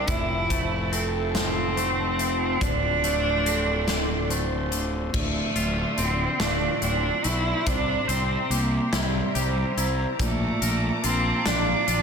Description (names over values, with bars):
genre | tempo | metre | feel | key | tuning
post-rock | 48 BPM (dotted quarters) | 6/8 | straight | D minor | A4 = 439 Hz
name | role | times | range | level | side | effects
rich cello | melody | 0.0-12.0 s | G3 to E4 | -26 LUFS | right 1 dB | slapback echo
muted studio string section | sustained chords | 0.0-12.0 s | F3 to D6 | -35 LUFS | right 1 dB | none
twangy electric guitar | arpeggios | 0.0-12.0 s | D2 to C5 | -32 LUFS | left 1 dB | slapback echo
vibraphone with medium mallets | arpeggios | 0.0-12.0 s | A4 to F5 | -35 LUFS | right 3 dB | slapback echo
fuzz fingered electric bass | bass | 0.0-12.0 s | D1 to C2 | -28 LUFS | equal | overdrive
big rock drum kit | drums | 0.1-12.0 s | crash cymbal, hi-hat, kick drum, snare drum | -29 LUFS | left 1 dB | none
room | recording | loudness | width
moderate lush hall reverb, RT60 2.7 s | big arena sound | -22 LUFS | side -6 dB against mid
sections
0.0-5.1 A section; 5.1-12.0 B section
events
none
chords
0.1 Fmaj7; 2.6 Dm7; 7.7 C7; 10.2 Bbmaj7